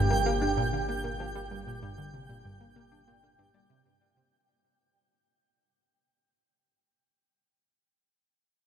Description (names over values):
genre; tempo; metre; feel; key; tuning
ambient; 96 BPM; 4/4; straight; G minor; A4 = 444 Hz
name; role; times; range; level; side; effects
Celtic harp; arpeggios; 0.0-6.5 s; F4 to G5; -36 LUFS; equal; auto-pan, ping-pong delay
analog pluck; riff; 0.0-4.3 s; G2 to D4; -32 LUFS; right 1 dB; chorus, phaser, ping-pong delay
round analog bass; bass; 0.0-4.3 s; G1; -36 LUFS; equal; none
twinkling granular texture; texture; 0.0-4.3 s; G5; -34 LUFS; right 2 dB; built-in reverb
room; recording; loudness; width
wet huge ambient reverb, RT60 7.4 s; dark, warm production; -28 LUFS; side -9 dB against mid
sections
0.0-4.3 A section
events
fade-out on synth arpeggio sound 0.0-4.3; fade-out on harp 0.0-4.3; fade-out on analog synth bass 0.0-4.3; fade-out 0.0-4.3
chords
0.0 Gm